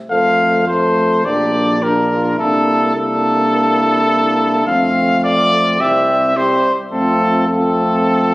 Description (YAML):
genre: classical, brass quintet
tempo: 106 BPM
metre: 4/4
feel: rubato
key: F major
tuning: A4 = 441 Hz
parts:
  - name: clear trumpet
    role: melody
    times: 0.1-8.3 s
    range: A4 to F5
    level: -15 LUFS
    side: equal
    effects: none
  - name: mellow flugelhorn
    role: second line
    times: 0.1-8.3 s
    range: E4 to C5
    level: -25 LUFS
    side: right 2 dB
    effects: none
  - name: warm French horn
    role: accompaniment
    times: 0.1-8.3 s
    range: C4 to A4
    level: -20 LUFS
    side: equal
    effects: none
  - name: warm trombone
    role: accompaniment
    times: 0.1-8.3 s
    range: G3 to Bb3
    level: -22 LUFS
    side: right 1 dB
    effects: none
  - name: mellow bass trombone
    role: bass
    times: 0.1-8.3 s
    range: Bb1 to F2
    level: -22 LUFS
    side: equal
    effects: none
room: moderate scoring stage reverb, RT60 1.8 s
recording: recorded on a phone in the room, studio reverb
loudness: -12 LUFS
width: side -20 dB against mid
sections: 0.1-8.3 A section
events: none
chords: 0.1 F; 1.3 Gm/Bb; 2.4 C13; 4.7 F; 5.8 C; 6.9 F